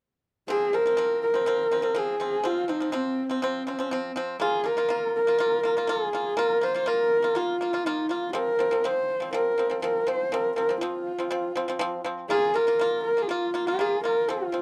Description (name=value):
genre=mongolian traditional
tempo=122 BPM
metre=4/4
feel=straight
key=F yu mode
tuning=A4 = 440 Hz
part: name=dark horsehead fiddle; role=melody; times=0.5-14.6 s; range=C4 to C5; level=-27 LUFS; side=equal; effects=none
part: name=pipa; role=arpeggios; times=0.5-14.6 s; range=F3 to F4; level=-33 LUFS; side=equal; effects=tape echo
room=little or no reverb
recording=dry, close 1970s-style studio recording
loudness=-26 LUFS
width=mono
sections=0.5-14.6 A section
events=none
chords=0.5 F5; 4.4 Bb5; 8.3 F5; 12.3 Bb5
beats=| 0.49 0.97 1.46 1.95 | 2.44 2.93 3.42 3.91 | 4.40 4.89 5.38 5.88 | 6.37 6.86 7.36 7.85 | 8.34 8.84 9.33 9.82 | 10.32 10.81 11.31 11.80 | 12.30 12.79 13.29 13.79 | 14.28